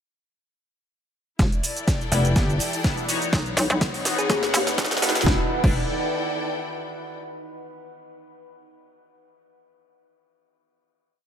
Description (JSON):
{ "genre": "bass house", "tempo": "124 BPM", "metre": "4/4", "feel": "swing 54% on 16ths", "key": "unclear", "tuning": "A4 = 440 Hz", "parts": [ { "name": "deep dark ambient pad", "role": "sustained chords", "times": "2.3-5.5 s", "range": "D#4 to B5", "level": "-31 LUFS", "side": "right 1 dB", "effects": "chorus, built-in reverb, sidechain pumping" }, { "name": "hollow knocking FM bass", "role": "bass", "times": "1.4-5.9 s", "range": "E1 to D#2", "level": "-25 LUFS", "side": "equal", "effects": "tube saturation, sidechain pumping" }, { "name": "electronic kick drum", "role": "drums", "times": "1.4-5.7 s", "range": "none", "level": "-23 LUFS", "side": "equal", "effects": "overdrive" }, { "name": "house drum kit", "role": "drums", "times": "1.4-5.7 s", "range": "cabasa, crash cymbal, hi-hat, snare drum", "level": "-27 LUFS", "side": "right 1 dB", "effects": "overdrive, high-pass filter on snare, high-pass filter on hats, high-pass filter on perc, high-pass filter on cymbals, high-pass filter on room" }, { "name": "soft-mallet drum kit", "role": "drums", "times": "1.4-5.1 s", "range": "hi-hat, ride cymbal, snare drum", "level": "-40 LUFS", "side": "left 4 dB", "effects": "none" }, { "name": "riser", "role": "sound effects", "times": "3.0-5.3 s", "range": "none", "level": "-34 LUFS", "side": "right 2 dB", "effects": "none" }, { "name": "rich chamber string section", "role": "texture", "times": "1.4-7.2 s", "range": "D#4 to G5", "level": "-31 LUFS", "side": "left 2 dB", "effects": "sidechain pumping" }, { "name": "band-passed chord stab", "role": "stabs", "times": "2.1-5.8 s", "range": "G3 to D#5", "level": "-30 LUFS", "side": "left 3 dB", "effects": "phaser, lush chorus, sidechain pumping, ping-pong delay" }, { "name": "pulsing pluck wobble bass", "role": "bass", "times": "2.1-5.2 s", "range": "F1 to D#2", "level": "-24 LUFS", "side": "equal", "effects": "chorus, tube saturation, sidechain pumping" }, { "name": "thumb-piano-like synth pluck", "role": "melody", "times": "4.2-5.2 s", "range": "F#4 to G#4", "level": "-30 LUFS", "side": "left 4 dB", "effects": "chorus, phaser, ping-pong delay" } ], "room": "light reverb", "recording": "high-pass filter", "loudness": "-20 LUFS", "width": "side -8 dB against mid", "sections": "1.4-5.3 build; 5.3-7.2 final chord", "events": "build-up 1.4-5.3; drum fill 1.4-5.3; filter sweep on ambient pad 1.4-5.3; filter sweep 1.4-5.3; riser 3.0-5.3", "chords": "1.4 Em7; 3.3 B; 5.3 Em7" }